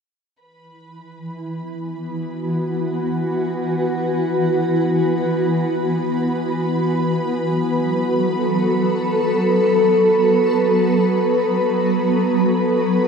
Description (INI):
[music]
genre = ambient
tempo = free time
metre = none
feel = none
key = unclear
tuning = A4 = 441 Hz
[part]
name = granular cloud pad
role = sustained chords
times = 1.2-13.1 s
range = E3 to B4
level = -17 LUFS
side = equal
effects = built-in reverb
[part]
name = dark studio violin section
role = texture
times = 0.4-13.1 s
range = B4 to B5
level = -31 LUFS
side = right 1 dB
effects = none
[sound]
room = wet huge ambient reverb, RT60 8.2 s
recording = cassette tape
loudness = -16 LUFS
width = side -6 dB against mid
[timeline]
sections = 0.4-13.1 A section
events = fade-in on violin section 0.4-13.1; filter sweep on ambient pad 0.4-13.1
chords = 0.4 Esus2; 7.2 F#m